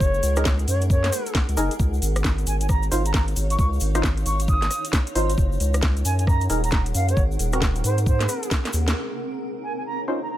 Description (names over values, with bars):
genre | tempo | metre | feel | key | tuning
UK garage, two-step garage | 134 BPM | 4/4 | swing 63% on 16ths | Db major | A4 = 441 Hz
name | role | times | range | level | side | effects
silver concert flute | melody | 0.0-10.4 s | C5 to Eb6 | -28 LUFS | right 1 dB | none
saturated sub bass | bass | 0.0-8.9 s | Eb1 to Ab2 | -22 LUFS | equal | none
electronic kick drum | drums | 0.0-8.6 s | none | -21 LUFS | equal | none
egg shaker | percussion | 0.0-8.9 s | none | -35 LUFS | left 4 dB | none
granular cloud pad | texture | 0.0-10.4 s | C4 to Gb5 | -33 LUFS | right 1 dB | built-in reverb, sidechain pumping
garage drum kit | drums | 0.2-8.9 s | hi-hat, rim click, snare drum | -28 LUFS | equal | none
percussive organ stab | stabs | 0.4-10.2 s | C4 to C5 | -28 LUFS | equal | lush chorus, digital delay
room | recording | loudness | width
digital ambience | none | -20 LUFS | side -13 dB against mid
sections
0.0-9.0 A section; 9.0-10.4 B section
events
drum fill 8.6-9.0; band accent 8.8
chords
0.0 Gb69; 1.8 Dbmaj9; 5.4 Gb69; 7.2 Ab9; 9.0 Dbmaj9